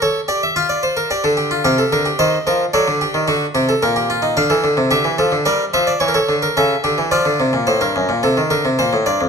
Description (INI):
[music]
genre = classical, baroque-style 3-part fugue for harpsichord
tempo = 110 BPM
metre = 3/4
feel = straight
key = unclear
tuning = A4 = 440 Hz
[part]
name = harpsichord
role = solo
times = 0.0-9.3 s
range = F2 to F5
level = -14 LUFS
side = equal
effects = none
[sound]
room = moderate recital hall reverb, RT60 1.8 s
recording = close, detailed microphones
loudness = -14 LUFS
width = side -6 dB against mid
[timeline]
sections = 0.0-7.7 A section; 7.7-9.3 B section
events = none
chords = 0.0 A7; 0.6 Dm/F; 1.1 G5; 2.2 Cm/Eb; 2.7 D7; 3.8 Gm/Bb; 4.4 Dm; 5.5 Gm; 6.0 A7; 7.1 Dm; 7.7 D7(no3) (rootless); 8.8 Gm